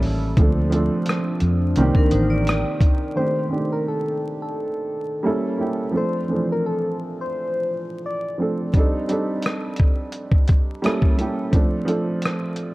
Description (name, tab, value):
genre	lo-fi hip hop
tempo	86 BPM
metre	4/4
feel	swing 57% on 16ths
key	C dorian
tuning	A4 = 436 Hz
part	dark upright piano	accompaniment	0.0-12.7 s	Eb3 to A4	-23 LUFS	right 1 dB	none
part	deep dark ambient pad	sustained chords	0.0-3.1 s	C3 to A4	-32 LUFS	left 1 dB	none
part	vintage muted fingered electric bass	bass	0.0-2.6 s	A1 to F2	-21 LUFS	equal	none
part	dusty soul sampler-style drum kit	drums	0.0-3.0, 8.7-12.7 s	hi-hat, kick drum, rim click	-19 LUFS	equal	none
part	vibraphone with medium hard mallets	second line	2.0-3.1 s	D4 to D5	-27 LUFS	left 1 dB	analog delay
part	soft struck synth lead	melody	3.2-8.4 s	A4 to D5	-26 LUFS	left 1 dB	chorus
room	light reverb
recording	dark, warm production, vinyl crackle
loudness	-19 LUFS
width	side -19 dB against mid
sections	0.0-3.2 A section; 3.2-12.7 B section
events	none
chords	0.4 Dm7; 1.8 Cm9; 3.2 Cm69; 5.2 A7b9; 5.9 Dm7; 8.7 Cm69; 10.8 A7b9; 11.5 Dm7